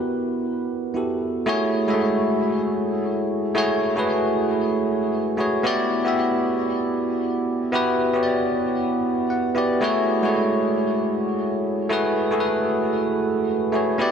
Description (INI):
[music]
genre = amapiano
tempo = 115 BPM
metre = 4/4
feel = swing 58% on 16ths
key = unclear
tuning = A4 = 440 Hz
[part]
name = bell-like tine electric piano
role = solo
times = 0.0-14.1 s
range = G#3 to F#5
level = -20 LUFS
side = equal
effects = wide subtle chorus, diffuse ambient delay
[sound]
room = wet cathedral reverb, RT60 5.7 s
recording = dreamy mix soaked in reverb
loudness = -20 LUFS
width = side -7 dB against mid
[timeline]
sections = 0.0-1.5 A section; 1.5-14.1 B section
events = drop 1.5-14.1; tine electric piano fill 9.0-9.8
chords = 0.0 Em9; 1.5 F#m9; 5.6 Em9; 9.8 F#m9